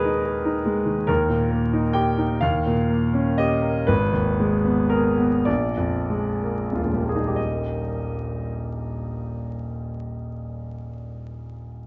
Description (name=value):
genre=classical, romantic character piece for solo piano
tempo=29-49 BPM (dotted quarters)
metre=6/8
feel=rubato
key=Eb major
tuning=A4 = 440 Hz
part: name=bright grand piano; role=solo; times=0.0-11.9 s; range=Eb1 to G5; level=-24 LUFS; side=equal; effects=none
room=wet large studio reverb, RT60 1.3 s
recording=dark, warm production, vinyl crackle, nothing above 7.6 kHz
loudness=-23 LUFS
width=mono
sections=0.0-7.4 A section; 7.4-10.7 B section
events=slowing down 0.0-7.4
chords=0.0 Abm/Eb; 1.1 Eb; 2.4 Eb7; 3.9 Abm; 5.5 Bb7; 7.4 Eb